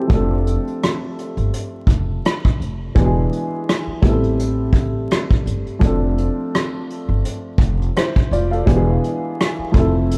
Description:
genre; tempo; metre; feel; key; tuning
lo-fi hip hop; 84 BPM; 4/4; swing 56% on 16ths; F major; A4 = 440 Hz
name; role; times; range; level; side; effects
warm upright piano; accompaniment; 0.0-10.2 s; E3 to F5; -24 LUFS; equal; low-pass filter
upright bass; bass; 0.1-10.2 s; E1 to A1; -23 LUFS; equal; none
vintage brush drum kit; drums; 0.1-10.2 s; hi-hat, kick drum, rim click; -20 LUFS; equal; none
room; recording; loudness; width
light reverb, studio ambience; vinyl crackle; -19 LUFS; mono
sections
0.0-10.2 A section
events
none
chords
0.1 F6; 3.0 E7; 4.0 Am7; 5.8 F6; 8.7 E7

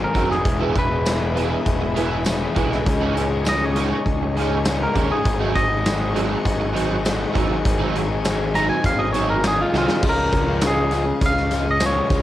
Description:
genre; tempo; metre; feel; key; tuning
indie rock; 100 BPM; 4/4; straight; unclear; A4 = 440 Hz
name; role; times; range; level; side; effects
twangy electric guitar; melody; 0.0-12.2 s; F4 to Bb5; -24 LUFS; equal; cassette tape
crunchy overdriven guitar; riff; 0.0-12.2 s; E2 to Ab4; -24 LUFS; left 6 dB; cassette tape
fuzz picked electric bass; bass; 0.0-12.2 s; E1 to Eb2; -25 LUFS; equal; overdrive
overdriven electric guitar; riff; 0.1-9.9 s; Db3 to E4; -27 LUFS; right 7 dB; ensemble chorus, cassette tape, tape echo
big rock drum kit; drums; 0.1-12.2 s; crash cymbal, hi-hat, kick drum, snare drum, tambourine; -24 LUFS; equal; none
string machine, violins; sustained chords; 0.5-12.2 s; G#4 to Db6; -33 LUFS; equal; ensemble chorus, cassette tape
tambourine; percussion; 1.1-12.2 s; none; -42 LUFS; right 8 dB; none
room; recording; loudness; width
light reverb; home recording on cassette; -18 LUFS; side -13 dB against mid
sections
0.0-10.0 A section; 10.0-12.2 B section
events
clean electric guitar solo 0.0-10.0; drum fill 9.7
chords
0.5 Emaj7; 2.9 Dbsus2; 5.3 Ab7sus4; 10.0 Dbadd9

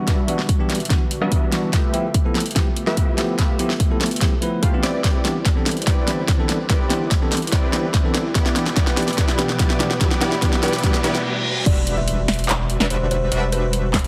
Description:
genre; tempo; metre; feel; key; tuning
future bass; 145 BPM; 4/4; half-time; G major; A4 = 441 Hz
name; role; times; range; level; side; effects
bell-like tine electric piano; accompaniment; 0.0-11.2 s; E3 to B4; -28 LUFS; equal; sidechain pumping, dub echo
ethereal airy pad; sustained chords; 0.0-14.1 s; B2 to B4; -35 LUFS; equal; none
supersaw stab; riff; 0.0-14.1 s; G3 to F5; -28 LUFS; equal; sidechain pumping, low-pass filter, dub echo
saturated sub bass; bass; 0.0-14.1 s; E1 to C2; -32 LUFS; equal; none
riser, reverse cymbal and impact; sound effects; 4.4-13.3 s; none; -34 LUFS; equal; none
electronic kick drum; drums; 0.1-14.0 s; none; -22 LUFS; equal; none
pop drum kit; drums; 0.1-14.1 s; crash cymbal, handclaps, hi-hat, snare drum; -26 LUFS; equal; high-pass filter on snare, high-pass filter on hats, high-pass filter on cymbals
buzzing kalimba; melody; 11.7-13.9 s; B4 to E5; -29 LUFS; equal; sidechain pumping
room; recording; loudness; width
moderate lush hall reverb, RT60 1.7 s, digital ambience; heavily compressed radio sound; -20 LUFS; mono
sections
0.0-11.7 A section; 11.7-14.1 B section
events
build-up 0.0-11.7; drum fill 0.0-11.2; filter sweep on supersaw synth 0.0-11.7; reverse cymbal 10.8-11.7; break 11.2-11.7; drop 11.7-14.1; impact 11.7-13.3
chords
0.0 Em9; 1.7 G13; 4.8 Cmaj9; 8.1 G69; 11.7 Em9

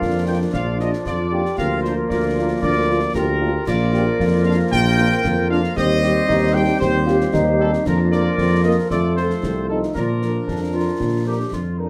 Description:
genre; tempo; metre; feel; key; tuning
military-style march for wind band; 115 BPM; 2/4; straight; Bb major; A4 = 439 Hz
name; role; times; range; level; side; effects
clear trumpet section; melody; 0.0-11.5 s; A4 to G5; -26 LUFS; equal; none
clear euphonium; second line; 0.0-11.8 s; A3 to G4; -28 LUFS; equal; none
mellow woodwind section; second line; 0.0-11.9 s; D4 to D5; -28 LUFS; equal; none
clear trombone section; sustained chords; 0.0-11.8 s; F3 to D4; -27 LUFS; equal; none
mellow tuba; bass; 0.0-11.9 s; Bb1 to Bb2; -23 LUFS; equal; none
concert snare drum, concert bass drum and clash cymbals; drums; 0.0-11.7 s; none; -32 LUFS; equal; none
dark French horn section; accompaniment; 0.3-11.9 s; F3 to Bb4; -28 LUFS; equal; none
room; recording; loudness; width
light reverb; close, detailed microphones; -19 LUFS; mono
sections
0.0-11.9 A section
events
none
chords
0.0 Bb; 1.6 Bb/D; 3.7 Bb; 5.8 Cm/Eb; 7.9 Bb/F; 8.9 F; 10.0 Bb

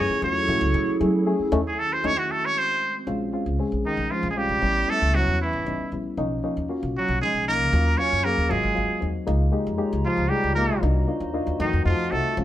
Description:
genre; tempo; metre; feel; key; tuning
jazz; 77 BPM (dotted quarters); 6/8; straight; unclear; A4 = 440 Hz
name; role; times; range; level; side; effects
trumpet with straight mute; melody; 0.0-12.4 s; Eb4 to C#5; -24 LUFS; right 1 dB; none
reed electric piano; accompaniment; 0.0-12.4 s; E#3 to G#4; -27 LUFS; left 3 dB; none
warbly tape-like pad; sustained chords; 0.0-3.1, 9.5-12.4 s; D#3 to Bb5; -30 LUFS; right 2 dB; chorus, built-in reverb
upright bass; bass; 0.0-12.4 s; Ab1 to F#3; -25 LUFS; equal; none
bright trombone; second line; 3.9-12.4 s; Eb3 to Db4; -29 LUFS; right 2 dB; none
room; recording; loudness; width
moderate stone room reverb, RT60 1.0 s; band playing live in one room; -21 LUFS; side -13 dB against mid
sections
0.0-3.1 A section; 3.1-12.4 B section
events
muted trumpet solo 0.0-3.1; band accent 1.5-3.1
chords
0.0 F#m9; 1.5 D#m7b5; 2.3 G#7; 3.1 Bbm7; 4.6 A9; 6.2 Bmaj9#11; 7.7 Ebm9; 8.5 Ab13; 9.3 Db69; 10.8 Cm7b5; 11.6 F7b9

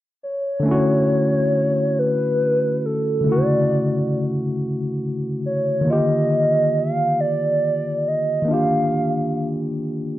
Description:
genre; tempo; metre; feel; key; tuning
R&B; 46 BPM (dotted quarters); 6/8; straight; unclear; A4 = 440 Hz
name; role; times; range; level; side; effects
hollow clarinet-like synth lead; melody; 0.2-9.5 s; A4 to F5; -20 LUFS; right 1 dB; chorus
barky tine electric piano; accompaniment; 0.6-10.2 s; C#3 to G4; -20 LUFS; left 1 dB; medium stereo tremolo
room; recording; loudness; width
moderate studio reverb, RT60 0.8 s; dark, warm production; -18 LUFS; side -14 dB against mid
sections
0.7-10.2 A section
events
none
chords
0.0 N.C.; 0.7 Dmaj9; 5.9 Ebmaj9

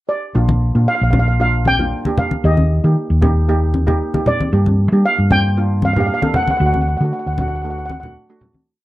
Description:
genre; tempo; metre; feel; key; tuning
calypso; 115 BPM; 4/4; straight; Bb major; A4 = 443 Hz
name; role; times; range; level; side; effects
steel pan; melody; 0.1-8.1 s; D5 to G5; -19 LUFS; equal; none
steel pan; accompaniment; 0.3-8.5 s; A3 to A4; -22 LUFS; right 2 dB; none
hollow-body short-scale fingered electric bass; bass; 0.4-8.2 s; Bb1 to G3; -15 LUFS; equal; none
congas; percussion; 0.5-8.7 s; none; -20 LUFS; left 1 dB; none
room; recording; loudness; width
little or no reverb; dry, close 1970s-style studio recording; -14 LUFS; side -16 dB against mid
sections
0.0-0.3 pickup bar; 0.3-8.7 verse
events
fade-out 6.6-8.7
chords
0.3 Bb; 2.4 Eb; 4.5 Gm; 6.6 D

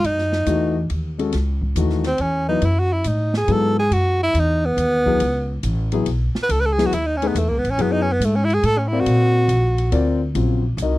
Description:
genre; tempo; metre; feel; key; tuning
modal jazz; 140 BPM; 3/4; swing 67% on 8ths; F# dorian; A4 = 438 Hz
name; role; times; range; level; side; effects
clear tenor saxophone; melody; 0.0-10.1 s; A3 to B4; -20 LUFS; right 1 dB; none
upright bass; bass; 0.0-11.0 s; A1 to A#2; -20 LUFS; equal; none
open jazz drum kit; drums; 0.0-10.9 s; hi-hat, kick drum, ride cymbal, snare drum; -32 LUFS; equal; none
warm baby grand piano; accompaniment; 0.5-11.0 s; Db3 to E#5; -22 LUFS; left 5 dB; none
room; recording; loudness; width
little or no reverb; dry, close 1970s-style studio recording; -17 LUFS; side -17 dB against mid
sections
0.0-10.4 A section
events
tenor saxophone solo 0.0-10.4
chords
0.0 F#m9; 9.1 A#; 10.4 Ebm9

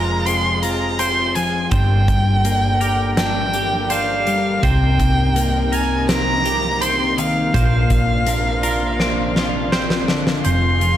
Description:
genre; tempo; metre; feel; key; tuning
post-rock; 82 BPM; 4/4; straight; F dorian; A4 = 441 Hz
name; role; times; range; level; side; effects
warm violin; melody; 0.0-11.0 s; F5 to C6; -21 LUFS; equal; slapback echo
warm chamber string section; sustained chords; 0.0-11.0 s; Bb2 to F5; -27 LUFS; right 2 dB; none
twangy electric guitar; arpeggios; 0.0-11.0 s; Bb4 to C5; -29 LUFS; right 5 dB; analog chorus, slapback echo
twelve-string electric guitar; arpeggios; 0.0-11.0 s; F2 to G4; -23 LUFS; left 3 dB; slapback echo
hollow-body short-scale fingered electric bass; bass; 0.0-11.0 s; F1 to C2; -21 LUFS; right 1 dB; none
huge arena drum kit; drums; 0.3-11.0 s; hi-hat, kick drum, snare drum; -23 LUFS; equal; none
room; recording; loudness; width
light reverb, small room ambience; none; -15 LUFS; side -11 dB against mid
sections
0.0-10.5 A section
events
drum fill 9.0-10.5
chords
0.0 Fm; 1.7 Gm; 4.6 Cm7; 7.5 Bbadd9; 10.5 Fm

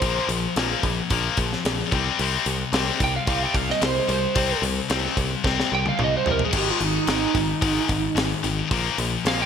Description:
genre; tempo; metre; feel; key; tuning
hard rock; 110 BPM; 4/4; straight; C minor; A4 = 440 Hz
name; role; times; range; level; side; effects
lightly driven lead guitar; melody; 0.0-9.5 s; Eb4 to G5; -26 LUFS; right 5 dB; analog chorus, ping-pong delay
heavy high-gain guitar; riff; 0.0-9.5 s; Ab2 to C4; -24 LUFS; left 8 dB; distortion
picked electric bass; bass; 0.0-9.4 s; Ab1 to C2; -28 LUFS; right 1 dB; none
tight metal drum kit; drums; 0.0-9.4 s; crash cymbal, hi-hat, kick drum, snare drum, toms; -26 LUFS; equal; none
room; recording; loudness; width
moderate lush hall reverb, RT60 2.2 s; bright 1980s-style digital production; -20 LUFS; side -7 dB against mid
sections
0.0-9.5 A section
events
lead electric guitar solo 0.0-9.5; drum fill 5.4-6.5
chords
0.0 Bb5; 1.9 C5; 6.5 Ab5; 8.7 Bb5

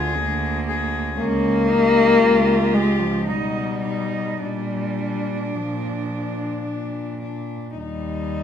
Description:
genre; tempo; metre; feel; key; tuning
classical, lyrical piece for cello ensemble; 52-60 BPM; 3/4; rubato; Eb major; A4 = 440 Hz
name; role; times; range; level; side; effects
warm cello; melody; 0.0-8.4 s; D4 to Ab4; -29 LUFS; left 6 dB; none
dark cello; second line; 0.0-7.2 s; Bb3 to F4; -28 LUFS; right 9 dB; none
dark cello; accompaniment; 0.0-8.4 s; D3 to Bb3; -21 LUFS; left 4 dB; none
dark cello; bass; 0.0-8.4 s; Db2 to B2; -25 LUFS; right 2 dB; none
room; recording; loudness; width
moderate large studio reverb, RT60 1.1 s; minimal, uncompressed stereo recording; -19 LUFS; side -8 dB against mid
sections
0.0-8.4 A section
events
none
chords
0.0 Bb7/D; 1.2 Eb9/Db; 3.3 Baug; 4.4 Bb; 7.8 Eb

